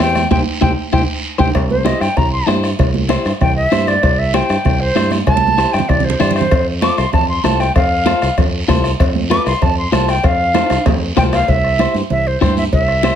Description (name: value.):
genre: latin, cumbia.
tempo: 193 BPM.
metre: 4/4.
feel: straight.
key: C major.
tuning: A4 = 440 Hz.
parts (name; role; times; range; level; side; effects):
reedy silver concert flute; melody; 0.0-13.2 s; C5 to D6; -17 LUFS; equal; none.
clean electric guitar; accompaniment; 0.0-13.2 s; E4 to C5; -19 LUFS; left 5 dB; none.
fingered electric bass; bass; 0.0-13.1 s; C2 to G2; -19 LUFS; equal; none.
bombo; percussion; 0.0-13.2 s; none; -19 LUFS; left 2 dB; none.
congas; percussion; 0.0-13.2 s; none; -22 LUFS; right 9 dB; none.
cowbell and timbales; percussion; 0.0-12.9 s; none; -25 LUFS; right 4 dB; none.
guiro; percussion; 0.0-13.2 s; none; -29 LUFS; right 4 dB; none.
room: light reverb.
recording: none.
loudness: -12 LUFS.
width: side -9 dB against mid.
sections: 0.0-1.5 A section; 1.5-11.5 B section; 11.5-13.2 C section.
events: band accent 0.3-1.5; drum fill 0.8-1.5, 5.3-6.5, 10.6-11.5; flute solo 1.5-11.5.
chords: 0.0 C; 6.5 F; 11.5 C.